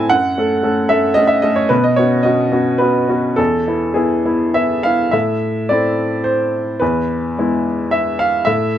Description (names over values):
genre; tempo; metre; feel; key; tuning
neoclassical minimalist piano; 102-114 BPM; 3/4; rubato; unclear; A4 = 440 Hz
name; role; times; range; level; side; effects
clear upright piano; solo; 0.0-8.8 s; E2 to A5; -14 LUFS; equal; none
room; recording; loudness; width
light reverb; none; -14 LUFS; side -11 dB against mid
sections
0.0-5.1 A section; 5.1-8.8 B section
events
none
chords
0.1 F#m; 1.7 Badd9; 3.4 E; 5.1 Am; 6.8 E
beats
| 0.10 0.64 1.17 | 1.71 2.25 2.81 | 3.39 3.97 4.55 | 5.14 5.70 6.25 | 6.81 7.37 7.92 | 8.47